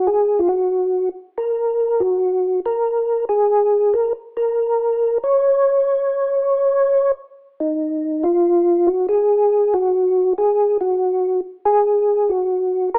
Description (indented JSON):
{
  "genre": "jazz",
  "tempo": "93 BPM",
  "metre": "4/4",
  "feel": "swing 67% on 8ths",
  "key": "unclear",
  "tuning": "A4 = 438 Hz",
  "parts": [
    { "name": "percussive tonewheel organ", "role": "solo", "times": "0.0-13.0 s", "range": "Eb4 to Db5", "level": "-18 LUFS", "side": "equal", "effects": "slow rotary speaker, chorus vibrato" }
  ],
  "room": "light reverb",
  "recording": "telephone sound",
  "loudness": "-18 LUFS",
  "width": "mono",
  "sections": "0.0-13.0 A section",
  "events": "none",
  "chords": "none"
}